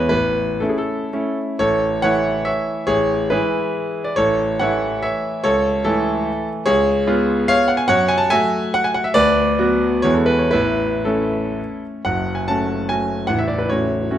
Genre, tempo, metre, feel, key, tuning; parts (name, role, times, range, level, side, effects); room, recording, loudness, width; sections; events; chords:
classical, romantic triple-time dance for piano with dotted rhythms; 108-159 BPM; 3/4; rubato; A major; A4 = 439 Hz
clear concert grand piano; solo; 0.0-14.2 s; A0 to A5; -16 LUFS; equal
moderate recital hall reverb, RT60 1.5 s; -16 LUFS; side -11 dB against mid
0.0-1.6 A section; 1.6-12.1 A section; 12.1-14.2 B section
0.1 A; 2.9 E/A; 4.2 A; 5.4 A/C#; 6.7 C#7; 7.9 F#m; 9.1 Bm/D; 10.0 E; 10.5 A; 12.1 F#m; 13.3 F#m/A